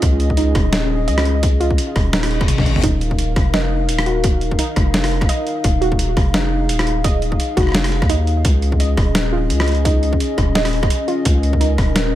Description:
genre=half-time drum and bass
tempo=171 BPM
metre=4/4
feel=swing 56% on 16ths, half-time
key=Eb minor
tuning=A4 = 440 Hz
part: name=dark analog pad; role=sustained chords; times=0.0-12.2 s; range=Db4 to F5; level=-23 LUFS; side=left 2 dB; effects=chorus, sidechain pumping
part: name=warbly dusty pluck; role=arpeggios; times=0.0-11.7 s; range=Eb4 to Eb5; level=-25 LUFS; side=right 3 dB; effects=chorus, digital delay
part: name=long sustained 808-style bass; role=bass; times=0.0-12.2 s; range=Eb1 to Eb2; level=-19 LUFS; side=equal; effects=none
part: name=boom bap sampler-style drum kit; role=drums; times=0.0-12.0 s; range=hi-hat, rim click, snare drum, toms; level=-22 LUFS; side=equal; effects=none
part: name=electronic kick drum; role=drums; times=0.0-11.9 s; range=none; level=-18 LUFS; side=equal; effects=none
part: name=reverse cymbal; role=sound effects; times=2.3-2.8 s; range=none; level=-30 LUFS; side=left 6 dB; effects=none
room=digital ambience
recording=none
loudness=-14 LUFS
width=side -13 dB against mid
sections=0.0-12.2 A section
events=reverse cymbal 2.3-2.8; drum fill 2.5-2.8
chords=0.0 Db; 2.8 Ebm; 8.4 Db

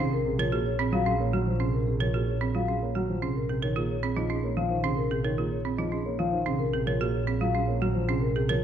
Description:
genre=classical, minimalist pattern music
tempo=111 BPM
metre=3/4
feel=straight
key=unclear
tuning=A4 = 441 Hz
part: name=vibraphone with soft mallets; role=melody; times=0.0-8.6 s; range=Ab4 to Gb5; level=-32 LUFS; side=left 4 dB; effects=none
part: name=dark baby grand piano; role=accompaniment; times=0.0-8.6 s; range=C3 to Bb3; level=-30 LUFS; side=left 1 dB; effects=none
part: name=folk marimba with hard mallets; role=arpeggios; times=0.0-8.6 s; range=C4 to Bb4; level=-32 LUFS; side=right 8 dB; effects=none
part: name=warm double bass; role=bass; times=0.1-8.6 s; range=Bb1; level=-30 LUFS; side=right 1 dB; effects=none
room=moderate scoring stage reverb, RT60 1.6 s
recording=dark, warm production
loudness=-25 LUFS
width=side -9 dB against mid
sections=0.0-8.6 A section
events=none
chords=0.1 Gbmaj9/Bb; 3.4 Bbm9; 6.6 Gbmaj9/Bb

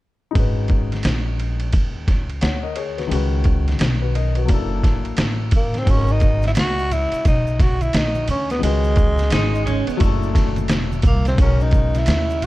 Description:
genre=hip hop, jazz-hop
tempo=87 BPM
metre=4/4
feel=swing 62% on 16ths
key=G# minor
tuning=A4 = 440 Hz
part: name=warm grand piano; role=accompaniment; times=0.3-12.5 s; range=A#2 to F#5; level=-28 LUFS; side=left 8 dB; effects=none
part: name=upright bass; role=bass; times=0.4-12.5 s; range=E1 to D#2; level=-21 LUFS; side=equal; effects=none
part: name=trip hop sampler-style drum kit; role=drums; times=0.4-12.5 s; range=hi-hat, kick drum, ride cymbal, snare drum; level=-20 LUFS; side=equal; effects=overdrive
part: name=growling tenor saxophone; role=melody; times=5.6-12.5 s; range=G#3 to F#4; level=-23 LUFS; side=equal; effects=tape echo
part: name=maracas and congas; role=percussion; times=5.9-12.5 s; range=none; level=-32 LUFS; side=right 4 dB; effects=none
part: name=clean electric guitar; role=second line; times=9.3-10.9 s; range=A3 to D#4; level=-25 LUFS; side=right 1 dB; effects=none
room=small room ambience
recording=dark, warm production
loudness=-16 LUFS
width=side -17 dB against mid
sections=0.4-5.9 A section; 5.9-12.5 B section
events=none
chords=0.4 G#m11; 3.1 C#sus2; 4.5 F#7alt; 5.9 G#m11; 8.6 C#sus2; 10.0 F#7alt; 11.4 Bmaj9

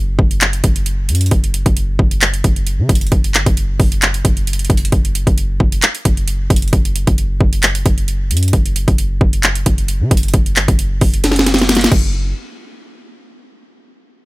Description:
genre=hip hop, trap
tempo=133 BPM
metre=4/4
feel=half-time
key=unclear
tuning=A4 = 442 Hz
part: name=warm 808-style bass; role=bass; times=0.0-12.3 s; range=F#1 to C#3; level=-17 LUFS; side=equal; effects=none
part: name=trap drum kit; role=drums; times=0.2-12.0 s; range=crash cymbal, handclaps, hi-hat, kick drum, snare drum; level=-14 LUFS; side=equal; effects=none
room=little or no reverb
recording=none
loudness=-12 LUFS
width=side -21 dB against mid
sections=0.0-12.1 A section; 12.1-13.9 B section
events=drum fill 11.2-12.1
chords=none

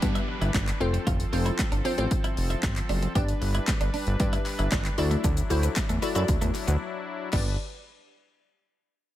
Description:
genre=dance-pop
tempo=115 BPM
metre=4/4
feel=straight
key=G major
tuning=A4 = 441 Hz
part: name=glassy wavetable pluck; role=accompaniment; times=0.0-7.6 s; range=B3 to D5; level=-31 LUFS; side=left 2 dB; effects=chorus, sidechain pumping
part: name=pipe organ, strings celeste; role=sustained chords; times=0.0-7.6 s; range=F3 to B4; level=-35 LUFS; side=left 2 dB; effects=sidechain pumping
part: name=fat analog bass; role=bass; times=0.0-7.6 s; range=F1 to G2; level=-27 LUFS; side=equal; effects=sidechain pumping
part: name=house drum kit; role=drums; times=0.0-7.5 s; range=crash cymbal, handclaps, hi-hat, kick drum, shaker, snare drum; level=-28 LUFS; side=equal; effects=none
part: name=downlifter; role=sound effects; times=0.0-3.2 s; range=none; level=-41 LUFS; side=right 1 dB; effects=none
part: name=twelve-string electric guitar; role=riff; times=0.2-7.5 s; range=A3 to G4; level=-35 LUFS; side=right 2 dB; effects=wide subtle chorus
part: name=group handclap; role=percussion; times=3.7-7.6 s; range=none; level=-41 LUFS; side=left 4 dB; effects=none
room=little or no reverb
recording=none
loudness=-24 LUFS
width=side -13 dB against mid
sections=0.0-7.3 A section; 7.3-9.2 B section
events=break 6.8-7.3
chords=0.0 G; 0.8 F; 3.2 G; 5.0 Dadd9; 7.3 G

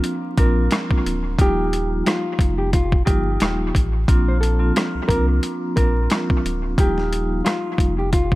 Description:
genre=hip hop, boom-bap hip-hop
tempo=89 BPM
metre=4/4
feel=swing 55% on 16ths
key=Bb major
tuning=A4 = 442 Hz
part: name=vibraphone with medium mallets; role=accompaniment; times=0.0-8.2 s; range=F3 to F4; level=-24 LUFS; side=equal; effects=cassette tape, high-pass filter, low-pass filter, analog delay
part: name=boom bap sampler-style drum kit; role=drums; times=0.0-8.4 s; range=hi-hat, kick drum, rim click, snare drum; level=-19 LUFS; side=equal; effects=none
part: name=nylon-string guitar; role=melody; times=0.4-8.4 s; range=F4 to C5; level=-26 LUFS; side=equal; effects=high-pass filter, low-pass filter, analog delay
part: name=warm sub bass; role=bass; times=0.4-8.4 s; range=D1 to C2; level=-22 LUFS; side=equal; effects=none
room=small room ambience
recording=echo-heavy mix, vinyl crackle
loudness=-17 LUFS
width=side -18 dB against mid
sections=0.0-8.4 A section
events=none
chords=0.0 Bbadd9; 1.4 Ebadd9; 4.1 Bbadd9; 6.8 Ebadd9

